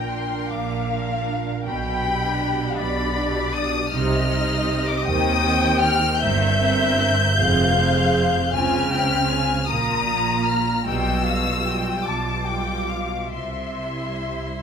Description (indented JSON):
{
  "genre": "classical, slow romantic movement for string orchestra",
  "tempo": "52 BPM (dotted quarters)",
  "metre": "6/8",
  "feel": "rubato",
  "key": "C minor",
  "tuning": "A4 = 440 Hz",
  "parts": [
    { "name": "rich studio violin section", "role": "melody", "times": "0.0-14.6 s", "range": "Bb5 to G6", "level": "-25 LUFS", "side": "left 3 dB", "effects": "none" },
    { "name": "warm studio violin section", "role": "second line", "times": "0.0-14.6 s", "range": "D5 to Bb5", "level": "-25 LUFS", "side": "left 3 dB", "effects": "none" },
    { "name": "rich studio viola section", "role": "accompaniment", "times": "0.0-14.6 s", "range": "G3 to Bb4", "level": "-27 LUFS", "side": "right 3 dB", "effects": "none" },
    { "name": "clear studio cello section", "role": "bass", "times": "0.0-14.5 s", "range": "F2 to Eb3", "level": "-27 LUFS", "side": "right 2 dB", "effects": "none" },
    { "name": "rich studio double bass section", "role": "bass", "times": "0.0-14.5 s", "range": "F1 to Eb2", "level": "-26 LUFS", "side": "right 2 dB", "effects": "none" }
  ],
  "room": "light reverb",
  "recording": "close, detailed microphones",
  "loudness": "-19 LUFS",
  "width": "side -7 dB against mid",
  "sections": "0.0-14.6 A section",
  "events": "none",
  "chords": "0.0 Bb; 1.7 G/B; 3.9 Cm; 5.1 Cm/Eb; 6.2 C7/G; 7.4 Fm; 8.5 Dbmaj7; 9.7 Bb5; 10.9 G7/B; 13.3 C"
}